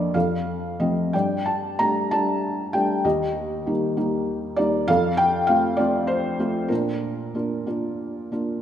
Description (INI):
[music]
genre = classical, lyrical solo piano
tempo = 65 BPM (dotted quarters)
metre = 6/8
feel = uneven beats, rubato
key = Bb major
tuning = A4 = 439 Hz
[part]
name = felt-muted upright piano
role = solo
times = 0.0-8.6 s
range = Eb2 to Bb5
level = -21 LUFS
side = equal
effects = none
[sound]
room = wet scoring stage reverb, RT60 1.9 s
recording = recorded in a church or concert hall, nothing above 11.0 kHz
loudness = -21 LUFS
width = side -10 dB against mid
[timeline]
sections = 0.0-8.6 A section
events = none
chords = 0.1 F; 1.1 Gsus2; 3.0 Eb; 4.9 F; 6.7 Bb